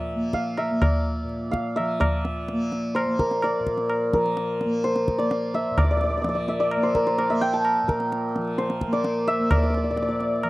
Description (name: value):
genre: indian classical, Hindustani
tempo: 128 BPM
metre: 4/4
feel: straight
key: Bb raga yaman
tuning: A4 = 437 Hz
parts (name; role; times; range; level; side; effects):
- santur; melody; 0.0-10.5 s; Bb4 to A5; -24 LUFS; equal; none
- tanpura; drone; 0.0-10.5 s; Bb2 to Bb3; -29 LUFS; equal; none
- tabla; percussion; 0.3-10.5 s; none; -26 LUFS; equal; none
room: light reverb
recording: dark, warm production, vinyl crackle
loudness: -21 LUFS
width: side -19 dB against mid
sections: 0.0-2.0 A section; 2.0-10.5 B section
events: speeding up 0.0-10.5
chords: none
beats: | 0.10 0.57 1.05 1.53 | 2.00 2.48 2.95 3.43 | 3.90 4.37 4.84 5.31 | 5.78 6.25 6.72 7.18 | 7.65 8.12 8.58 9.04 | 9.51 9.97 10.43